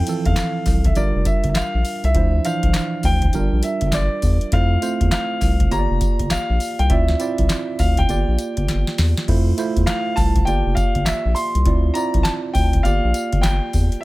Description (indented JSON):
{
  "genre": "R&B, new jack swing",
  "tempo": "101 BPM",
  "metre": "4/4",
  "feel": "swing 63% on 16ths",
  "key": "G dorian",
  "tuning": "A4 = 440 Hz",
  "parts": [
    { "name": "warm concert grand piano", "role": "melody", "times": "0.0-14.0 s", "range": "D5 to C6", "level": "-24 LUFS", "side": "left 1 dB", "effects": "none" },
    { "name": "tine electric piano", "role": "accompaniment", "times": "0.0-14.0 s", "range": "E3 to D5", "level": "-24 LUFS", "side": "right 4 dB", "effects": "none" },
    { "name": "round analog bass", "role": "bass", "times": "0.0-13.9 s", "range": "F1 to F2", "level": "-19 LUFS", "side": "equal", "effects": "none" },
    { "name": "booming analog drum machine", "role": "drums", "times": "0.1-14.0 s", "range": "crash cymbal, handclaps, hi-hat, kick drum, snare drum, tambourine", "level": "-21 LUFS", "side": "equal", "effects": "none" },
    { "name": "group handclap", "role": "percussion", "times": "0.4-13.6 s", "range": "none", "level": "-38 LUFS", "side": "left 5 dB", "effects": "none" }
  ],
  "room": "digital ambience",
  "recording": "none",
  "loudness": "-16 LUFS",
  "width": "side -19 dB against mid",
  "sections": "0.0-14.0 A section",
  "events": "drum fill 8.7-9.3",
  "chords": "0.0 Fmaj7; 1.0 Gm7; 2.1 Dm9; 3.3 Gm7; 4.5 Fmaj7; 5.7 Gm7; 6.9 Dm9; 8.1 Gm7; 9.3 Fmaj7; 10.5 Gm7; 11.7 Dm9; 12.8 Gm7",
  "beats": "0.37 0.96 1.56 | 2.15 2.74 3.34 3.93 | 4.53 5.12 5.71 6.31 | 6.90 7.50 8.09 8.69 | 9.28 9.87 10.47 11.06 | 11.65 12.25 12.84 13.44 | 14.03"
}